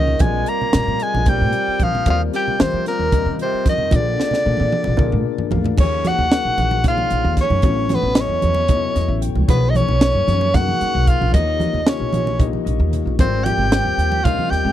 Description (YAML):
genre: electric jazz fusion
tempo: 226 BPM (eighths)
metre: 7/8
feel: straight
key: unclear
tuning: A4 = 443 Hz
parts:
  - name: bright soprano saxophone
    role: melody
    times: 0.0-14.7 s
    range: Bb4 to Bb5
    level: -21 LUFS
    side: left 2 dB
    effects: none
  - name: clear tenor saxophone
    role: second line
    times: 0.0-14.7 s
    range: Bb2 to G4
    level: -27 LUFS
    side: right 14 dB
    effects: none
  - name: overdriven tine electric piano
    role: accompaniment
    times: 0.0-14.7 s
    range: F3 to G5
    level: -26 LUFS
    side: left 19 dB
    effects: auto-pan
  - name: upright bass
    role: bass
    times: 0.0-14.7 s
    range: Ab1 to Eb3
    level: -20 LUFS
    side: equal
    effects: none
  - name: congas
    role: percussion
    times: 0.1-14.7 s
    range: none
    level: -26 LUFS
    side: right 4 dB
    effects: none
  - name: crisp fusion drum kit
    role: drums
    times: 0.2-14.6 s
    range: crash cymbal, hi-hat, kick drum, snare drum, toms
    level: -18 LUFS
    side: right 1 dB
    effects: none
room: little or no reverb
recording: dry, close 1970s-style studio recording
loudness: -15 LUFS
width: side -12 dB against mid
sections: 0.0-5.8 A section; 5.8-14.7 B section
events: drum fill 4.2-5.8, 12.8-13.2; tine electric piano fill 5.0-5.8, 8.7-9.5, 12.4-13.2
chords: 0.2 Bb69; 2.1 Ebmaj13; 3.9 Bb7; 5.8 Ebm9; 7.6 Aadd9; 9.5 B69; 11.3 Eb9; 13.2 Abmaj9